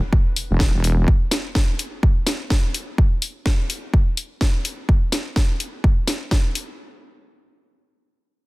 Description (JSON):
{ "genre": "bass house", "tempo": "126 BPM", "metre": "4/4", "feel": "swing 59% on 16ths", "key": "unclear", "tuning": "A4 = 440 Hz", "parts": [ { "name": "impact", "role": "sound effects", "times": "0.1-1.1 s", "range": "none", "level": "-36 LUFS", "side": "equal", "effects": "none" }, { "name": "electronic kick drum", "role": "drums", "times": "0.1-6.4 s", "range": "none", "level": "-17 LUFS", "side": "equal", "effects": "none" }, { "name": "house drum kit", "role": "drums", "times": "0.4-6.7 s", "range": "hi-hat, snare drum", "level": "-25 LUFS", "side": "left 1 dB", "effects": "soft clipping on snare" }, { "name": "wobble bass", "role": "bass", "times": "0.5-1.1 s", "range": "E1", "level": "-17 LUFS", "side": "equal", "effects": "chorus, overdrive, sidechain pumping" } ], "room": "little or no reverb", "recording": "dense, heavily limited modern master", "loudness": "-18 LUFS", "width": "side -22 dB against mid", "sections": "0.0-6.8 A section", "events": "impact 0.0-1.1", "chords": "none", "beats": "0.13 0.60 | 1.08 1.55 2.03 2.51 | 2.98 3.46 3.94 4.41 | 4.89 5.36 5.84 6.32" }